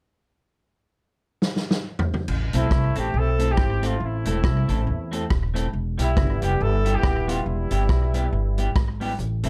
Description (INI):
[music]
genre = ska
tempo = 139 BPM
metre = 4/4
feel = swing 58% on 8ths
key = A minor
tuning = A4 = 441 Hz
[part]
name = vintage drum kit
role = drums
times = 1.4-9.5 s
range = crash cymbal, hi-hat, kick drum, rim click, snare drum, toms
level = -26 LUFS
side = equal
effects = none
[part]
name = upright bass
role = bass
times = 2.3-9.5 s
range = D#1 to E2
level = -26 LUFS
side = equal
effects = none
[part]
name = warm horn section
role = melody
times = 2.5-9.5 s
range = G3 to A4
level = -30 LUFS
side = equal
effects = slapback echo
[part]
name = semi-hollow electric guitar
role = accompaniment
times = 2.5-9.5 s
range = G3 to A4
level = -32 LUFS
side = equal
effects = none
[sound]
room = little or no reverb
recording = dark, warm production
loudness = -23 LUFS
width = mono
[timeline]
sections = 0.5-2.3 A section; 2.3-9.5 B section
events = drum fill 1.4-2.3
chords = 0.5 N.C.; 2.3 Am; 5.7 Em